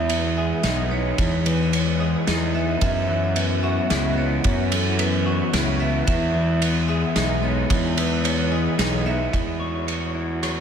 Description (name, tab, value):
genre	post-rock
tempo	110 BPM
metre	3/4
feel	straight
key	E major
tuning	A4 = 439 Hz
part	evolving wavetable pad	sustained chords	0.0-10.6 s	E3 to F#4	-29 LUFS	left 1 dB	chorus, built-in reverb
part	clean electric guitar	arpeggios	0.0-10.6 s	E2 to C#5	-26 LUFS	left 3 dB	ensemble chorus, diffuse ambient delay
part	vibraphone with medium hard mallets	arpeggios	0.0-9.3 s	A4 to E5	-29 LUFS	right 3 dB	diffuse ambient delay
part	fuzz fingered electric bass	bass	0.0-10.6 s	B1 to F#2	-24 LUFS	equal	overdrive
part	loose indie drum kit	drums	0.1-10.6 s	kick drum, ride cymbal, rim click, snare drum	-26 LUFS	right 1 dB	none
room	moderate huge ambient reverb, RT60 4.1 s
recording	dreamy mix soaked in reverb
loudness	-19 LUFS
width	side -7 dB against mid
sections	0.0-9.3 A section; 9.3-10.6 B section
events	none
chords	0.0 Emaj7; 2.8 F#7sus4; 6.1 Emaj7; 9.3 F#m7/E